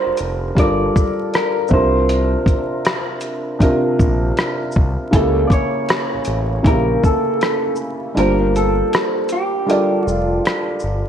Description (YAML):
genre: lo-fi hip hop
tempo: 79 BPM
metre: 4/4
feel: swing 64% on 16ths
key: G minor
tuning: A4 = 440 Hz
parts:
  - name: electric guitar through a small old amp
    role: melody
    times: 0.0-10.4 s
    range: G4 to D5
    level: -21 LUFS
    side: equal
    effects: analog delay
  - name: felt-muted upright piano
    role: accompaniment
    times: 0.0-11.1 s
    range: C3 to D5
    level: -20 LUFS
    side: right 1 dB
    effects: none
  - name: smooth gliding synth bass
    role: bass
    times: 0.1-11.0 s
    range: F1 to C#2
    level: -21 LUFS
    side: equal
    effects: none
  - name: dusty soul sampler-style drum kit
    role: drums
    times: 0.2-11.0 s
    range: hi-hat, kick drum, rim click, shaker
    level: -18 LUFS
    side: equal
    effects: none
room: moderate plate reverb, RT60 2.3 s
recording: dreamy mix soaked in reverb, vinyl crackle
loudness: -15 LUFS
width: side -9 dB against mid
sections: 0.0-11.1 A section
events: kick muted 8.2-11.1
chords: 0.0 Gm7; 1.7 C9sus4; 5.1 A7b9; 8.2 Gm11